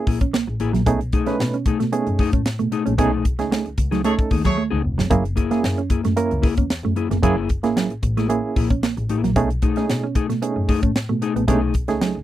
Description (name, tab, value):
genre	funk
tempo	113 BPM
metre	4/4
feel	straight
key	unclear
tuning	A4 = 440 Hz
part	barky reed electric piano	stabs	0.0-12.2 s	A3 to B4	-23 LUFS	right 4 dB	overdrive, fast tremolo
part	mellow electric guitar	accompaniment	0.1-12.2 s	A3 to G#4	-24 LUFS	left 7 dB	none
part	mellow electric guitar	riff	0.1-12.1 s	F#3 to C#4	-24 LUFS	right 7 dB	none
part	dark double bass	bass	0.1-12.2 s	E1 to B2	-24 LUFS	left 1 dB	none
part	tight funk drum kit	drums	0.1-12.1 s	hi-hat, kick drum, snare drum	-21 LUFS	equal	none
part	warm horn section	second line	4.0-4.6 s	A3 to C#5	-23 LUFS	equal	none
room	little or no reverb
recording	dry, close 1970s-style studio recording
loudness	-18 LUFS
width	side -13 dB against mid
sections	0.0-12.2 A section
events	band accent 3.0-5.1; drum fill 4.6-5.1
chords	0.0 F#9; 0.9 B13; 5.1 F#9; 9.4 B13